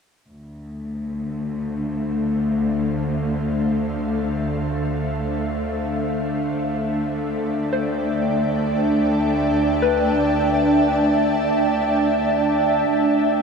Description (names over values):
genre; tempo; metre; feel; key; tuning
ambient; free time; none; none; D dorian; A4 = 440 Hz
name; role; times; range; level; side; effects
ethereal airy pad; sustained chords; 1.3-13.4 s; D4 to A5; -21 LUFS; right 1 dB; ensemble chorus, built-in reverb
dark symphonic cello section; bass; 0.3-13.4 s; D2; -26 LUFS; equal; none
bowed-like drone; drone; 0.8-13.0 s; D3 to A3; -27 LUFS; left 2 dB; built-in reverb
soft round pluck; arpeggios; 7.7-12.8 s; B4 to C5; -28 LUFS; left 5 dB; wide subtle chorus, ping-pong delay
room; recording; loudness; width
wet cathedral reverb, RT60 5.4 s; in a vast, echoing space; -19 LUFS; side -5 dB against mid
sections
0.3-12.9 A section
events
fade-in on ambient pad 0.3-12.9; fade-out on synth drone 0.3-12.9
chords
0.3 Dm9; 6.6 C6/D; 12.9 Dsus2